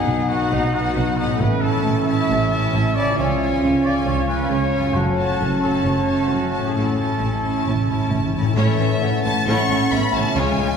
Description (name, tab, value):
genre	cinematic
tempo	134 BPM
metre	4/4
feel	straight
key	A major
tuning	A4 = 435 Hz
part	bright symphonic violin section	melody	0.0-10.8 s	E5 to C#6	-28 LUFS	left 3 dB	none
part	clear symphonic violin section	second line	0.0-10.7 s	D#4 to C#5	-31 LUFS	left 3 dB	none
part	mellow hollow concert flute	second line	0.0-10.8 s	C#5 to A5	-30 LUFS	left 2 dB	none
part	warm clarinet	second line	0.0-10.8 s	C#4 to D#4	-29 LUFS	right 4 dB	none
part	clear symphonic viola section	accompaniment	0.0-10.7 s	G#3 to C#4	-29 LUFS	right 1 dB	none
part	mellow French horn section	sustained chords	0.0-10.8 s	E3 to D#4	-25 LUFS	right 1 dB	none
part	concert harp	arpeggios	0.0-10.8 s	F#2 to A4	-28 LUFS	left 7 dB	none
part	clear trumpet section	stabs	0.0-8.1 s	D#4 to E5	-25 LUFS	equal	none
part	clear symphonic double bass section	bass	0.1-10.7 s	F#1 to C#2	-25 LUFS	right 2 dB	none
part	rich symphonic cello section	bass	0.1-10.7 s	F#2 to C#3	-26 LUFS	right 1 dB	none
part	timpani	percussion	1.4-2.0, 6.7-8.5 s	A2	-26 LUFS	left 1 dB	none
part	warm oboe	second line	8.6-10.8 s	E#5 to A5	-30 LUFS	equal	none
room	wet concert hall reverb, RT60 2.5 s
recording	heard from further back in the room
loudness	-17 LUFS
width	side -6 dB against mid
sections	0.0-8.6 A section; 8.6-10.8 A section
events	timpani fill 6.8-8.6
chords	0.0 B; 1.4 A; 3.2 C#; 5.0 F#m; 6.8 A